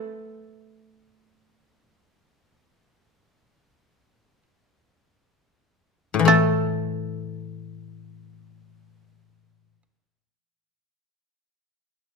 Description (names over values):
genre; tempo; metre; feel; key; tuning
japanese traditional, Japanese chamber music; free time; none; none; A kumoi; A4 = 440 Hz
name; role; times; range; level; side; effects
koto; melody; 0.0-9.8 s; A4 to A5; -21 LUFS; right 4 dB; none
shamisen; second line; 0.0-9.8 s; A3; -28 LUFS; right 6 dB; none
koto; accompaniment; 0.0-9.8 s; A2 to A3; -22 LUFS; left 7 dB; none
room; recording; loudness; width
moderate recital hall reverb, RT60 1.3 s; close, detailed microphones; -20 LUFS; side -4 dB against mid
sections
0.0-6.3 A section; 6.3-12.2 B section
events
slowing down 0.0-6.3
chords
none